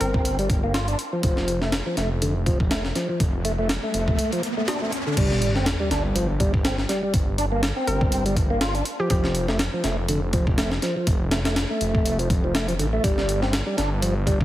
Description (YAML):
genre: breakbeat, breaks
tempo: 122 BPM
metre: 4/4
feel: swing 56% on 16ths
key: G minor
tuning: A4 = 440 Hz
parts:
  - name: hollow square pluck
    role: melody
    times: 0.0-0.2, 7.9-9.2 s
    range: G4 to Bb4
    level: -32 LUFS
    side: equal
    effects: chorus, small speaker sound, tape echo
  - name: tonewheel organ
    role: riff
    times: 0.0-14.4 s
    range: D3 to F4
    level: -26 LUFS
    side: equal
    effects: overdrive, fast rotary speaker, tape echo
  - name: detuned saw bass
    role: bass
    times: 0.0-14.4 s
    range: F1 to A1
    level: -26 LUFS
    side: equal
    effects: none
  - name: breakbeat sampler-style drum kit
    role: drums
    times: 0.0-14.4 s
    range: crash cymbal, hi-hat, kick drum, snare drum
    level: -24 LUFS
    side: equal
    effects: studio reverb
  - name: riser and sub drop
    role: sound effects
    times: 2.9-7.1 s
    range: none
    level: -30 LUFS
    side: equal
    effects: none
room: light reverb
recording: heavily compressed radio sound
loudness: -20 LUFS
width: side -14 dB against mid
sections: 0.0-5.2 A section; 5.2-14.4 B section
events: riser 2.9-5.2; drop 5.2-14.4; impact 5.2-7.1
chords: 0.0 Gm; 1.2 F; 5.2 G5; 9.1 F; 13.0 G5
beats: 0.25 0.74 | 1.24 1.73 2.22 2.71 | 3.20 3.69 4.19 4.68 | 5.17 5.66 6.15 6.65 | 7.14 7.63 8.12 8.61 | 9.11 9.60 10.09 10.58 | 11.07 11.56 12.06 12.55 | 13.04 13.53 14.02